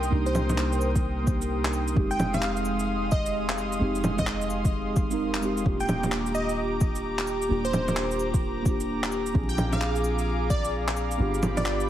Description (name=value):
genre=future garage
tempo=130 BPM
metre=4/4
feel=swing 63% on 16ths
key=unclear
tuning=A4 = 440 Hz
part: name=muted felt-like synth keys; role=accompaniment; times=0.0-11.9 s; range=Ab3 to B4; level=-30 LUFS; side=right 2 dB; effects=chorus, phaser, sidechain pumping, ping-pong delay
part: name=airy breathy pad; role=sustained chords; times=0.0-11.9 s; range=Ab3 to Eb6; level=-31 LUFS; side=left 1 dB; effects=chorus, sidechain pumping
part: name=soft 808-style bass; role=bass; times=0.0-11.9 s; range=Eb1 to C2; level=-31 LUFS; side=equal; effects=sidechain pumping
part: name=electronic shaker, bongos, cabasa and handclaps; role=drums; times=0.0-11.9 s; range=none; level=-30 LUFS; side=equal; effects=overdrive
part: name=plucky unison lead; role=melody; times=0.3-11.9 s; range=C5 to G5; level=-33 LUFS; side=equal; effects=ping-pong delay
part: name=electronic kick drum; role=drums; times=1.0-10.6 s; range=none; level=-26 LUFS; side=equal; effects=overdrive
room=moderate digital room reverb, RT60 1.2 s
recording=heavily compressed radio sound, vinyl crackle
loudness=-24 LUFS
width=side -11 dB against mid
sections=0.0-11.9 A section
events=none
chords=0.0 Cm7; 2.0 Fm7; 5.7 Ebmaj7; 9.3 Bb7; 11.2 G7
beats=| 0.12 0.58 1.04 1.50 | 1.97 2.43 2.89 3.35 | 3.81 4.27 4.73 5.20 | 5.66 6.12 6.58 7.04 | 7.50 7.96 8.43 8.89 | 9.35 9.81 10.27 10.73 | 11.20 11.66